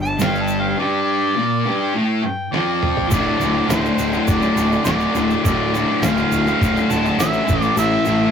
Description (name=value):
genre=garage rock duo or trio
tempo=103 BPM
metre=4/4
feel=straight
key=D minor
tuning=A4 = 439 Hz
part: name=mellow harmonica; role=melody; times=0.0-8.3 s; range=C5 to A5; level=-23 LUFS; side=right 1 dB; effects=overdrive
part: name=fuzz guitar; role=riff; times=0.0-8.3 s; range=D2 to Bb3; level=-18 LUFS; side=left 1 dB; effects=distortion
part: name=fuzz picked electric bass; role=bass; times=0.0-8.3 s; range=D1 to A1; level=-24 LUFS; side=equal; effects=overdrive
part: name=tube shaker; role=percussion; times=0.1-8.2 s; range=none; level=-34 LUFS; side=right 8 dB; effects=none
part: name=lo-fi sampler-style drum kit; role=drums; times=0.2-8.2 s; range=crash cymbal, hi-hat, kick drum, snare drum, toms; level=-24 LUFS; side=right 1 dB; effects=none
room=wet booth ambience, RT60 0.2 s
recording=rough rehearsal-room recording, warm saturation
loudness=-16 LUFS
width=side -7 dB against mid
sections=0.0-3.1 A section; 3.1-8.3 B section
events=harmonica solo 0.0-3.1; drum fill 2.5-3.1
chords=0.0 G5; 3.1 Dm; 7.5 A5